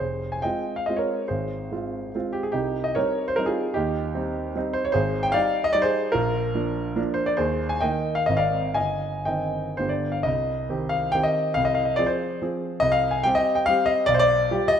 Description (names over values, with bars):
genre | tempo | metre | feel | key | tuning
classical, romantic triple-time dance for piano with dotted rhythms | 114-163 BPM | 3/4 | rubato | F minor, C minor from 4.9 s | A4 = 440 Hz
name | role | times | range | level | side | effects
clear concert grand piano | solo | 0.0-14.8 s | F1 to Ab5 | -22 LUFS | equal | none
room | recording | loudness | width
moderate scoring stage reverb, RT60 1.6 s | none | -22 LUFS | side -8 dB against mid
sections
0.0-10.3 A section; 10.3-14.8 B section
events
none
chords
0.0 Fm; 1.3 Fm/Ab; 2.5 Cm; 3.8 Cm/Eb; 4.9 Ab5; 6.1 Bb; 7.4 Eb5; 8.3 Ab; 8.8 Cm/G; 9.8 G; 10.3 Cm; 11.6 Fm/C; 12.8 C5; 14.1 G7/B